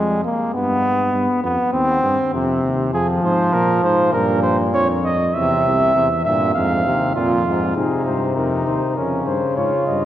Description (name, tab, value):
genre	classical, imitative canzona for brass ensemble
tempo	100 BPM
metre	4/4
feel	straight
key	F minor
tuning	A4 = 440 Hz
part	bright trombone	accompaniment	0.0-10.1 s	Ab2 to C4	-19 LUFS	equal	none
part	mellow bass trombone	bass	0.0-10.1 s	C2 to Bb2	-23 LUFS	right 1 dB	none
part	warm flugelhorn	second line	2.9-10.1 s	Db4 to F5	-20 LUFS	right 1 dB	none
part	dark cornet	melody	7.8-10.1 s	Ab4 to Eb5	-23 LUFS	left 5 dB	none
room	wet church reverb, RT60 3.5 s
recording	worn, warbling old tape, cassette tape, warbly pitch drift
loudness	-16 LUFS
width	side -12 dB against mid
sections	0.0-7.8 A section; 7.8-10.1 B section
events	none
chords	0.0 Fm; 0.5 G; 1.7 Cm/Eb; 2.9 Fm; 4.1 Gm; 5.3 C; 6.5 Fm; 7.8 Ab; 9.0 Db/F